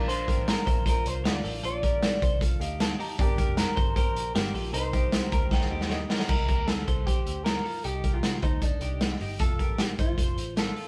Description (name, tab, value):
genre	jangly indie pop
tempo	154 BPM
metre	4/4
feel	straight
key	C dorian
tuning	A4 = 438 Hz
part	warm upright piano	accompaniment	0.0-6.3 s	C4 to Bb5	-41 LUFS	equal	none
part	twelve-string electric guitar	arpeggios	0.0-10.9 s	D4 to C5	-40 LUFS	equal	none
part	vintage muted picked electric bass	bass	0.0-10.7 s	F1 to C3	-37 LUFS	equal	none
part	electric guitar through a small old amp	melody	0.1-10.9 s	D4 to D5	-35 LUFS	equal	none
part	raw garage drum kit	drums	0.1-10.9 s	crash cymbal, hi-hat, kick drum, snare drum	-29 LUFS	equal	none
room	light reverb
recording	band playing live in one room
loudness	-27 LUFS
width	mono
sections	0.0-6.3 A section; 6.3-10.9 B section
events	upright piano fill 2.4-3.2, 5.1-6.3; drum fill 5.5-6.3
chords	0.0 Bb; 3.2 Gm; 4.7 Cm7; 6.3 Cm9; 9.4 F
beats	| 0.08 0.47 0.86 1.25 | 1.64 2.02 2.41 2.80 | 3.19 3.58 3.96 4.35 | 4.74 5.13 5.52 5.90 | 6.29 6.68 7.07 7.46 | 7.85 8.24 8.62 9.01 | 9.40 9.79 10.18 10.57